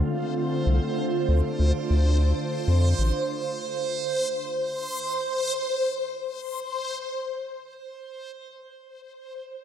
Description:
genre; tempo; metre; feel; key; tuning
IDM; free time; none; none; D minor; A4 = 440 Hz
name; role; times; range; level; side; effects
glassy FM pad; sustained chords; 0.0-3.4 s; D3 to F4; -29 LUFS; right 1 dB; ensemble chorus, built-in reverb
round analog bass; bass; 0.0-3.1 s; A1 to F2; -20 LUFS; equal; tube saturation
backwards swelling texture; texture; 0.2-8.4 s; C5; -29 LUFS; equal; built-in reverb
room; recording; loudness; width
light reverb; dry, gritty hardware recording; -23 LUFS; side -10 dB against mid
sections
0.0-8.4 A section; 8.4-9.6 B section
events
none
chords
0.0 Dm7; 3.5 N.C.

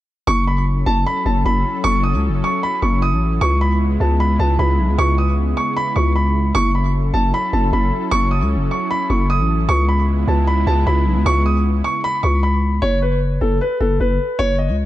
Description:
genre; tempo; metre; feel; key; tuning
hip hop; 153 BPM; 4/4; half-time; F# dorian; A4 = 441 Hz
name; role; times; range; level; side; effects
warm concert grand piano; melody; 0.3-14.7 s; A4 to D#6; -20 LUFS; right 1 dB; digital delay
warm analog pad; sustained chords; 0.3-12.8 s; C#3 to A4; -25 LUFS; right 1 dB; chorus
growling 808-style bass; bass; 0.3-14.9 s; F#1 to C#2; -17 LUFS; equal; none
room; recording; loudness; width
small room ambience; dark, warm production; -15 LUFS; side -14 dB against mid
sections
0.3-12.8 A section; 12.8-14.9 B section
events
none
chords
0.3 F#m7; 3.4 C#m7; 6.6 F#m7; 9.7 C#m7; 12.8 N.C.

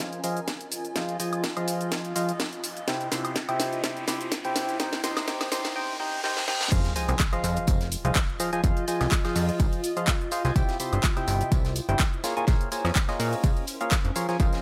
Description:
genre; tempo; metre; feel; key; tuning
piano house; 125 BPM; 4/4; swing 54% on 16ths; F minor; A4 = 437 Hz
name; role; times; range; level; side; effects
percussive organ stab; riff; 0.0-14.6 s; C3 to C6; -32 LUFS; equal; chorus, sidechain pumping, delay
electronic kick drum; drums; 0.0-14.5 s; none; -27 LUFS; equal; high-pass filter on kick
house drum kit; drums; 0.0-14.6 s; crash cymbal, handclaps, hi-hat, shaker, snare drum, woodblock; -33 LUFS; equal; none
riser, reverse cymbal and sub drop; sound effects; 0.7-8.6 s; none; -38 LUFS; equal; none
granular cloud pad; texture; 0.0-14.6 s; Db4 to Ab5; -39 LUFS; equal; built-in reverb, sidechain pumping
plucky analog bass; bass; 6.7-14.5 s; F1 to Bb2; -29 LUFS; equal; sidechain pumping
tight funk drum kit; drums; 6.7-14.6 s; hi-hat, snare drum, tambourine; -42 LUFS; equal; sidechain pumping on hats, high-pass filter on hats, low-pass filter on hats, high-pass filter on snare, low-pass filter on snare, sidechain pumping on perc, high-pass filter on perc, low-pass filter on perc, high-pass filter on room, low-pass filter on room
room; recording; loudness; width
light reverb, studio reverb; high-pass filter; -27 LUFS; mono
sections
0.0-6.7 A section; 6.7-14.6 B section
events
build-up 0.0-6.7; drum fill 0.0-5.8, 6.2-6.7; filter sweep on synth stab 0.0-6.7; filter sweep 0.0-6.7; riser 0.7-6.7; reverse cymbal 5.8-6.7; drop 6.7-14.6; impact 6.7-8.6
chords
0.0 Fm7; 2.9 C; 4.6 Bbm7; 6.7 Fm7; 10.6 C; 12.2 Bbm7

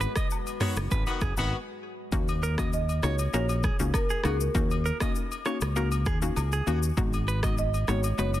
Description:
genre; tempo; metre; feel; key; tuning
afrobeats; 99 BPM; 4/4; straight; unclear; A4 = 441 Hz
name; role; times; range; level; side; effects
marimba with medium mallets; melody; 0.0-8.4 s; G#4 to D#5; -34 LUFS; right 3 dB; ping-pong delay
hollow square pluck; accompaniment; 0.0-8.4 s; G#3 to F#4; -33 LUFS; left 4 dB; chorus
deep dark ambient pad; sustained chords; 0.0-2.1 s; G#3 to B4; -43 LUFS; left 3 dB; chorus, built-in reverb, sidechain pumping
direct-recorded clean electric guitar; riff; 0.0-8.3 s; F#4 to D#5; -36 LUFS; right 5 dB; spring reverb, ping-pong delay
fingered electric bass; bass; 0.0-8.4 s; F#1 to D#2; -28 LUFS; equal; none
afro-pop drum kit; drums; 0.0-8.4 s; hi-hat, kick drum, rim click, shaker, toms; -30 LUFS; equal; soft clipping on snare
agogo bells and woodblock; percussion; 0.2-8.4 s; none; -39 LUFS; left 6 dB; none
warm horn section; second line; 0.6-1.6 s; D#3 to F#4; -34 LUFS; left 3 dB; none
room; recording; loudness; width
little or no reverb; dense, heavily limited modern master; -25 LUFS; side -13 dB against mid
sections
0.0-2.1 A section; 2.1-8.4 B section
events
band accent 0.0-2.1; break 1.5-2.1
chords
0.0 G#m7; 2.1 D#m7; 7.0 G#m7

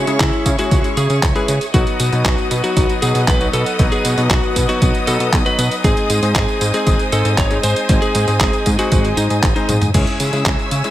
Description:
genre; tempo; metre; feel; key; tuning
italo disco; 117 BPM; 4/4; straight; C# minor; A4 = 441 Hz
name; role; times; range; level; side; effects
lightly driven lead guitar; melody; 0.0-9.8 s; D#4 to C#5; -22 LUFS; equal; tape echo
rich studio string section; sustained chords; 0.0-10.9 s; G#4 to E6; -23 LUFS; equal; none
clear electric grand piano; stabs; 0.0-10.9 s; F#3 to B#4; -22 LUFS; left 3 dB; none
fat analog bass; bass; 0.0-10.8 s; G#1 to C#3; -19 LUFS; equal; none
detuned 8-bit digital drum machine; drums; 0.1-10.9 s; crash cymbal, handclaps, hi-hat, tambourine, toms; -22 LUFS; right 1 dB; studio reverb
electronic kick drum; drums; 0.2-10.6 s; none; -18 LUFS; equal; studio reverb
room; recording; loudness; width
little or no reverb; none; -13 LUFS; side -13 dB against mid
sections
0.0-9.9 A section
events
drum fill 9.7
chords
0.0 C#m; 1.7 B; 5.8 G#; 9.9 C#m

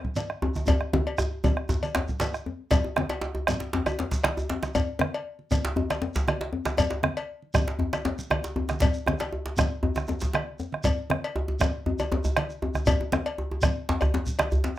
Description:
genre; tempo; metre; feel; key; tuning
west african traditional, West African drum ensemble; 118 BPM; 4/4; straight; none; none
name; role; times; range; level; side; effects
bombo; percussion; 0.0-14.5 s; none; -28 LUFS; right 1 dB; none
congas; percussion; 0.0-14.7 s; none; -34 LUFS; right 4 dB; none
cowbell; percussion; 0.2-14.5 s; none; -30 LUFS; left 4 dB; none
djembe; percussion; 0.2-14.8 s; none; -30 LUFS; left 3 dB; none
shekere; percussion; 0.2-14.8 s; none; -35 LUFS; right 1 dB; none
djembe; percussion; 0.4-14.8 s; none; -29 LUFS; right 1 dB; none
room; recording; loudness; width
wet studio reverb, RT60 0.5 s; rough home demo mix; -24 LUFS; side -13 dB against mid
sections
0.0-2.7 A section; 2.7-14.8 B section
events
drum fill 0.7-2.7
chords
none

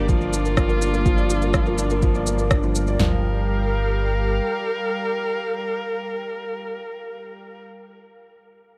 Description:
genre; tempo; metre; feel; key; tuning
piano and strings electronica; 124 BPM; 4/4; straight; unclear; A4 = 441 Hz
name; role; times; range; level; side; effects
warm viola; melody; 0.0-7.6 s; F4 to Bb4; -30 LUFS; equal; delay
lush unison pad; sustained chords; 0.0-7.6 s; G3 to F5; -34 LUFS; equal; chorus, sidechain pumping
felt-muted upright piano; riff; 0.0-8.8 s; F3 to D5; -28 LUFS; equal; delay
round analog bass; bass; 0.0-4.4 s; G1; -26 LUFS; equal; sidechain pumping
deep house drum kit; drums; 0.1-3.1 s; kick drum, snare drum, toms; -24 LUFS; equal; overdrive
electronic shaker and rim click; drums; 0.1-3.0 s; none; -29 LUFS; equal; none
room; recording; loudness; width
little or no reverb; none; -22 LUFS; mono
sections
0.0-3.0 A section; 3.0-6.9 B section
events
drop 0.0-3.0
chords
0.0 Gm7

